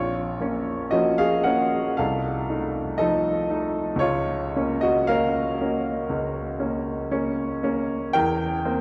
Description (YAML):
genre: classical, romantic nocturne for solo piano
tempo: 55-62 BPM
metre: 4/4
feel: rubato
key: Bb minor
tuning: A4 = 438 Hz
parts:
  - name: clear grand piano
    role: solo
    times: 0.0-8.8 s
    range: Bb1 to G5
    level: -24 LUFS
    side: equal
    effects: none
room: wet cathedral reverb, RT60 5.1 s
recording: recorded in a church or concert hall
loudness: -24 LUFS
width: mono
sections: 0.0-8.8 A section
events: none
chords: 0.0 Bbm; 2.0 F7/C; 4.0 Bbm/Db; 8.1 C7/E